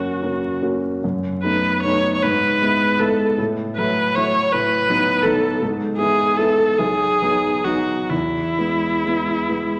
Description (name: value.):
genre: classical, romantic duo for viola and grand piano.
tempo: 43-56 BPM (dotted quarters).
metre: 6/8.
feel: rubato.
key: E major.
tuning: A4 = 441 Hz.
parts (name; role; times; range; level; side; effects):
rich viola; melody; 0.0-9.8 s; E4 to C#5; -21 LUFS; equal; none.
warm grand piano; accompaniment; 0.0-9.8 s; B1 to F#4; -24 LUFS; equal; none.
room: wet recital hall reverb, RT60 1.4 s.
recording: vinyl crackle.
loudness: -19 LUFS.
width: mono.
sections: 0.0-9.8 A section.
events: none.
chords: 0.0 F#; 1.0 B7/F#; 2.2 E/G#; 3.4 F#m7/A; 4.5 B7/A; 5.6 E/G#; 6.8 B; 8.1 E.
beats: | 1.03 2.24 | 3.39 4.52 | 5.62 6.79 | 8.10 9.50.